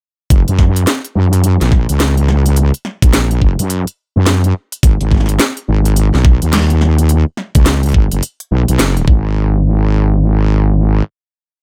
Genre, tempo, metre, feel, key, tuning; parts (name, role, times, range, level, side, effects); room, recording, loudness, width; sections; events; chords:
glitch hop; 106 BPM; 4/4; swing 62% on 16ths; G# minor; A4 = 439 Hz
wobble bass; bass; 0.3-11.0 s; F#1 to F#2; -14 LUFS; equal; chorus, overdrive
drum and bass drum kit; drums; 0.3-9.1 s; hi-hat, snare drum; -19 LUFS; equal
electronic kick drum; drums; 0.3-9.2 s; -12 LUFS; equal
little or no reverb; -13 LUFS; mono
0.3-9.4 drop; 9.4-11.6 final hit
drop 0.3-9.4; band accent 8.8